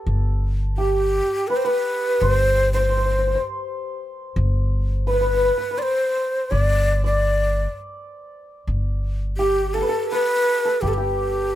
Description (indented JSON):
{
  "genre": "Persian modal ensemble",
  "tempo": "84 BPM",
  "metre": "3/4",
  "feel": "straight",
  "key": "G dastgah mahur",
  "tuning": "A4 = 439 Hz",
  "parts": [
    { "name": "santur", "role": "second line", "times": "0.0-11.6 s", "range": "G4 to D5", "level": "-26 LUFS", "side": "equal", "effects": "none" },
    { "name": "upright bass", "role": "bass", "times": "0.1-11.6 s", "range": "G1", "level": "-22 LUFS", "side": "equal", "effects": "none" },
    { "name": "breathy ney", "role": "melody", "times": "0.8-11.6 s", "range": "G4 to D5", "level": "-21 LUFS", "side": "equal", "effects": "none" }
  ],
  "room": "little or no reverb",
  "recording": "close, detailed microphones",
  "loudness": "-19 LUFS",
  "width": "side -13 dB against mid",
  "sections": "0.0-11.6 A section",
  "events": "none",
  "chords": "none"
}